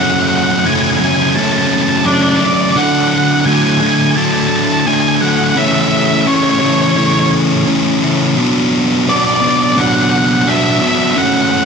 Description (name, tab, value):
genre	rock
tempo	86 BPM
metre	4/4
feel	straight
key	unclear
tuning	A4 = 438 Hz
part	octave-fuzz lead guitar	melody	0.0-11.6 s	C#5 to A5	-15 LUFS	right 1 dB	distortion, analog delay
part	thick fuzz guitar	riff	0.0-11.7 s	F#2 to D4	-12 LUFS	equal	distortion
room	moderate lush hall reverb, RT60 2.2 s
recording	none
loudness	-10 LUFS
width	side -5 dB against mid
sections	0.0-11.7 A section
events	none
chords	0.0 F#m; 2.8 D; 5.6 A/C#; 8.4 Bm